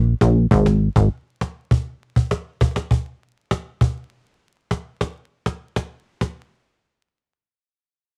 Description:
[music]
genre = dancehall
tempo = 100 BPM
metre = 4/4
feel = straight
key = unclear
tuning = A4 = 440 Hz
[part]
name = plucky analog bass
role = bass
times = 0.0-1.1 s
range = Ab1 to Bb1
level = -17 LUFS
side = equal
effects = none
[part]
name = cajon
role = drums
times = 0.2-6.3 s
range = none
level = -22 LUFS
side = equal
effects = none
[sound]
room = light reverb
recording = home recording on cassette, vinyl crackle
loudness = -22 LUFS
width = mono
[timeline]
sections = 0.0-6.5 A section; 6.5-8.2 B section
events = none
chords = none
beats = 0.51 1.11 | 1.71 2.31 2.91 3.51 | 4.11 4.71 5.31 5.91

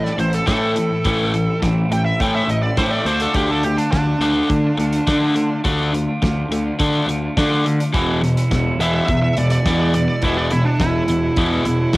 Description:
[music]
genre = quiet-loud alternative rock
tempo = 105 BPM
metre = 4/4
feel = straight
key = unclear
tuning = A4 = 443 Hz
[part]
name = smooth overdriven lead guitar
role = melody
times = 0.0-12.0 s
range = D4 to G5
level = -22 LUFS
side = right 1 dB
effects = cassette tape
[part]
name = clean electric guitar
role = arpeggios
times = 0.0-12.0 s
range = E2 to F4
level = -27 LUFS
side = right 2 dB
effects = lush chorus
[part]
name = crunchy overdriven guitar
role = riff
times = 0.0-12.0 s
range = E2 to D4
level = -20 LUFS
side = left 2 dB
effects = none
[part]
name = fuzz picked electric bass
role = bass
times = 0.0-12.0 s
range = E1 to D3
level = -22 LUFS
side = equal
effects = overdrive
[part]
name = loose indie drum kit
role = drums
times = 0.1-12.0 s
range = hi-hat, kick drum, snare drum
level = -24 LUFS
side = equal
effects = cassette tape
[part]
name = fuzz guitar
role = riff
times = 7.9-12.0 s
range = E2 to E3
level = -26 LUFS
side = right 4 dB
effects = none
[sound]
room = light reverb, small room ambience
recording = home recording on cassette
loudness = -16 LUFS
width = side -20 dB against mid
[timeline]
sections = 0.0-12.0 A section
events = lead electric guitar solo 0.0-12.0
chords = 0.0 Am; 3.1 Dm; 7.9 E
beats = 0.47 | 1.05 1.62 2.19 2.77 | 3.34 3.92 4.49 5.07 | 5.64 6.21 6.79 7.36 | 7.93 8.50 9.08 9.65 | 10.22 10.79 11.37 11.94

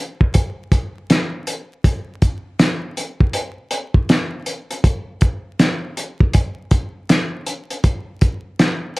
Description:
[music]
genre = hip hop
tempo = 80 BPM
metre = 4/4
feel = swing 63% on 16ths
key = none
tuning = none
[part]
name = cloth-damped thuddy drum kit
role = drums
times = 0.2-9.0 s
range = hi-hat, kick drum, snare drum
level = -16 LUFS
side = equal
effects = none
[sound]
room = light reverb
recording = vinyl crackle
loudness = -17 LUFS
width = side -23 dB against mid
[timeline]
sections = 0.0-9.0 A section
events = none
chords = none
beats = 0.34 1.09 | 1.84 2.59 3.34 4.09 | 4.84 5.59 6.34 7.09 | 7.84 8.59

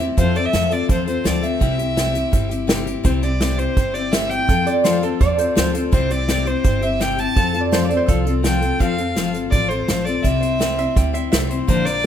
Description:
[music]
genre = honky-tonk and classic country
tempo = 167 BPM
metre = 4/4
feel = straight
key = C mixolydian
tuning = A4 = 439 Hz
[part]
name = picked steel-string acoustic guitar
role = accompaniment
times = 0.0-12.1 s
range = Bb2 to C5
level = -22 LUFS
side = left 6 dB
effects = none
[part]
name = upright bass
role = bass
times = 0.0-12.1 s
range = G1 to F2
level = -24 LUFS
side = right 1 dB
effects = none
[part]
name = unplugged drum kit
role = drums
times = 0.0-11.9 s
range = hi-hat, kick drum, snare drum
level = -20 LUFS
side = right 1 dB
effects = none
[part]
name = rich fiddle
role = melody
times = 0.2-12.1 s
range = C5 to A5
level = -23 LUFS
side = right 1 dB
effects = none
[part]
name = lap resonator guitar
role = second line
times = 4.7-8.3, 10.8-11.6 s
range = A4 to G5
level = -22 LUFS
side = right 4 dB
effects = none
[sound]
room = light reverb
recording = minimal, uncompressed stereo recording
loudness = -16 LUFS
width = side -9 dB against mid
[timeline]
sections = 0.0-12.1 A section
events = none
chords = 0.2 F; 1.6 C; 4.5 F; 5.9 C; 7.4 F; 10.2 C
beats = | 0.18 0.54 0.89 1.25 | 1.61 1.97 2.33 2.69 | 3.05 3.41 3.77 4.13 | 4.49 4.85 5.21 5.57 | 5.93 6.29 6.65 7.01 | 7.37 7.73 8.09 8.45 | 8.81 9.17 9.53 9.89 | 10.24 10.61 10.96 11.32 | 11.69 12.04

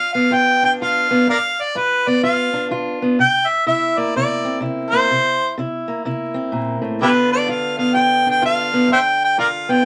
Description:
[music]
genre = acoustic country blues, solo or duo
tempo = 126 BPM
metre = 4/4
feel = swing 62% on 8ths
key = G mixolydian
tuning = A4 = 441 Hz
[part]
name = bright harmonica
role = melody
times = 0.0-9.8 s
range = E4 to G5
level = -18 LUFS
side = equal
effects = none
[part]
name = fingerpicked steel-string acoustic guitar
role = accompaniment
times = 0.0-9.8 s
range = G2 to F4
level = -22 LUFS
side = equal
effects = none
[sound]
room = moderate studio reverb, RT60 0.5 s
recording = vinyl crackle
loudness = -18 LUFS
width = mono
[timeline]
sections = 0.0-9.8 A section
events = none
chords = 0.0 G7; 3.2 C7; 7.0 G7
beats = 0.32 0.80 | 1.27 1.75 2.23 2.71 | 3.19 3.66 4.14 4.62 | 5.10 5.58 6.05 6.53 | 7.01 7.48 7.96 8.43 | 8.91 9.38

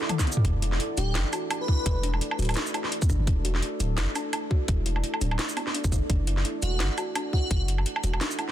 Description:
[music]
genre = half-time drum and bass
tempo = 170 BPM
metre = 4/4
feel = swing 57% on 16ths, half-time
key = unclear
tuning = A4 = 441 Hz
[part]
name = deep dark ambient pad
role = sustained chords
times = 0.0-8.5 s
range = E4 to F#5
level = -35 LUFS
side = right 2 dB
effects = chorus, built-in reverb, sidechain pumping
[part]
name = kalimba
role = arpeggios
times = 0.0-8.5 s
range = B3 to F#4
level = -36 LUFS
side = left 2 dB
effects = tape echo
[part]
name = drum and bass drum kit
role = drums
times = 0.0-8.5 s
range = hi-hat, shaker, snare drum, toms, woodblock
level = -29 LUFS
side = equal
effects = none
[part]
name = electronic kick drum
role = drums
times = 0.2-7.6 s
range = none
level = -24 LUFS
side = equal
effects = none
[part]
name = long sustained 808-style bass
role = bass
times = 0.4-8.2 s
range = D1 to G1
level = -27 LUFS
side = equal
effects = none
[part]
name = airy dreamy lead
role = melody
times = 1.0-2.1, 6.6-7.6 s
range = F#4 to B4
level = -35 LUFS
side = equal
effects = chorus, cassette tape, tape echo
[sound]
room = digital ambience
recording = dense, heavily limited modern master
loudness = -24 LUFS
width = side -12 dB against mid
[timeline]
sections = 0.4-8.5 A section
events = drum fill 0.1-0.4; drop 0.4-8.5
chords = 0.4 N.C.; 6.1 E9sus4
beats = 0.10 | 0.45 0.80 1.15 1.51 | 1.86 2.21 2.57 2.92 | 3.27 3.62 3.98 4.33 | 4.68 5.04 5.39 5.74 | 6.09 6.45 6.80 7.15 | 7.51 7.86 8.21

